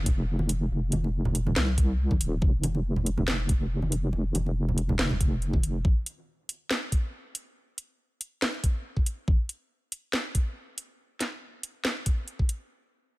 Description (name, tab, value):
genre	deep dubstep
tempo	140 BPM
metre	4/4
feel	swing 54% on 16ths, half-time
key	unclear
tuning	A4 = 440 Hz
part	deep soft wobble bass	bass	0.0-5.8 s	Eb1 to C2	-26 LUFS	equal	chorus, tube saturation
part	electronic kick drum	drums	0.1-12.5 s	none	-24 LUFS	equal	none
part	garage drum kit	drums	0.1-12.6 s	hi-hat, snare drum	-30 LUFS	equal	none
part	congas	percussion	0.4-5.6 s	none	-33 LUFS	right 1 dB	dub echo
room	little or no reverb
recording	none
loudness	-25 LUFS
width	side -20 dB against mid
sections	0.0-12.7 A section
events	none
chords	none